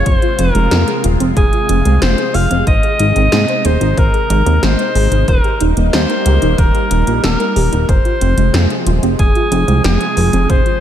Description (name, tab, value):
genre	synthwave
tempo	92 BPM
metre	4/4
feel	straight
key	unclear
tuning	A4 = 441 Hz
part	warm alto saxophone	melody	0.0-10.8 s	Ab4 to F5	-18 LUFS	left 1 dB	ping-pong delay, slapback echo
part	lush unison pad	sustained chords	0.0-10.8 s	C3 to F4	-21 LUFS	equal	chorus, phaser, sidechain pumping
part	chorused synth bass	bass	0.0-10.6 s	Eb1 to Ab2	-14 LUFS	equal	sidechain pumping
part	soft round pluck	arpeggios	0.1-10.7 s	F3 to C5	-20 LUFS	right 2 dB	ensemble chorus, ping-pong delay
part	80s electronic pad drums	drums	0.1-10.8 s	hi-hat, snare drum	-21 LUFS	equal	studio reverb
part	electronic kick drum	drums	0.1-10.6 s	none	-14 LUFS	equal	studio reverb
room	light reverb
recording	none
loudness	-11 LUFS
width	side -10 dB against mid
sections	0.0-10.8 A section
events	none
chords	0.0 Fm; 2.7 Ab; 5.3 Eb; 7.9 Fm